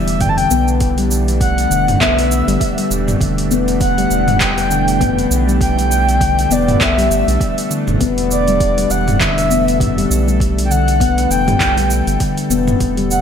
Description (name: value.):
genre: organic downtempo.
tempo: 100 BPM.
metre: 4/4.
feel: swing 57% on 16ths.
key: E minor.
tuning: A4 = 440 Hz.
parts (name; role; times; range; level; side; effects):
breathy flute-like synth lead; melody; 0.0-13.2 s; D5 to A5; -19 LUFS; equal; wide subtle chorus, ping-pong delay, shimmer reverb.
bowed-like drone; sustained chords; 0.0-13.2 s; E3 to A4; -24 LUFS; right 1 dB; built-in reverb, sidechain pumping, shimmer reverb.
round analog bass; bass; 0.0-13.2 s; E1 to B1; -19 LUFS; right 1 dB; sidechain pumping.
impact; sound effects; 0.0-0.8 s; none; barely audible; none; none.
deep house drum kit; drums; 0.1-13.2 s; cabasa, handclaps, hi-hat, toms; -20 LUFS; right 2 dB; overdrive, gated reverb.
handpan; arpeggios; 0.2-13.2 s; D3 to B3; -18 LUFS; left 5 dB; vintage 12-bit sampler grit, ping-pong delay, shimmer reverb.
electronic kick drum; drums; 0.2-12.9 s; none; -20 LUFS; right 1 dB; overdrive.
room: light reverb.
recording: bright 1980s-style digital production.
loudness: -12 LUFS.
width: side -8 dB against mid.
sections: 0.0-13.2 A section.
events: impact 0.0-0.8.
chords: 0.0 Em7.